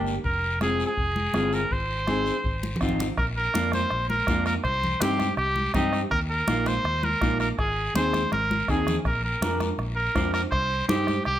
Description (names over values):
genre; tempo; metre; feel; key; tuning
latin, cumbia; 164 BPM; 4/4; straight; unclear; A4 = 441 Hz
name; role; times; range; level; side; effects
clear trumpet; melody; 0.0-11.4 s; Eb4 to C5; -26 LUFS; right 1 dB; none
mellow electric guitar; accompaniment; 0.0-11.2 s; Bb3 to C5; -29 LUFS; equal; none
fingered electric bass; bass; 0.0-11.4 s; F1 to G2; -30 LUFS; equal; none
guiro; percussion; 0.1-11.4 s; none; -40 LUFS; left 6 dB; none
bombo; percussion; 0.2-11.4 s; none; -32 LUFS; equal; none
congas; percussion; 0.6-11.4 s; none; -32 LUFS; left 2 dB; none
room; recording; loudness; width
moderate large studio reverb, RT60 1.2 s; none; -22 LUFS; side -12 dB against mid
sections
0.0-3.2 A section; 3.2-11.4 B section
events
drum fill 2.6-3.2, 8.1-9.1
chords
0.2 Fm; 1.7 Ab; 3.2 Bb; 4.6 Cm; 6.1 Ebsus2; 7.6 Ab; 9.1 Bb; 10.5 Cm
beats
| 0.25 0.61 0.98 1.35 | 1.71 2.08 2.45 2.81 | 3.18 3.55 3.92 4.28 | 4.65 5.02 5.38 5.75 | 6.12 6.48 6.85 7.22 | 7.58 7.95 8.32 8.69 | 9.05 9.42 9.79 10.15 | 10.52 10.89 11.26